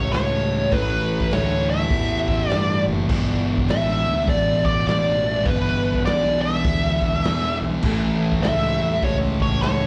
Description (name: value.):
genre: stoner and doom metal.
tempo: 101 BPM.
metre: 4/4.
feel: swing 63% on 8ths.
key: unclear.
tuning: A4 = 440 Hz.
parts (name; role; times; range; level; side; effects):
fuzz lead guitar; melody; 0.0-9.9 s; B4 to E5; -26 LUFS; equal; wah, distortion, slapback echo, analog delay.
thick fuzz guitar; riff; 0.0-9.9 s; E2 to A3; -29 LUFS; equal; distortion, slapback echo.
thick fuzz guitar; riff; 0.0-9.9 s; E2 to A3; -30 LUFS; equal; distortion, slapback echo.
fuzz fingered electric bass; bass; 0.0-9.9 s; F#1 to G2; -27 LUFS; equal; overdrive, tube saturation.
raw garage drum kit; drums; 0.1-9.8 s; crash cymbal, hi-hat, kick drum, snare drum; -29 LUFS; equal; none.
room: small room ambience.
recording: live gig heard through the venue's PA, club reverb.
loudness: -21 LUFS.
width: mono.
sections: 0.0-9.9 A section.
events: none.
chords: 0.0 A; 3.1 Em/G; 7.8 A.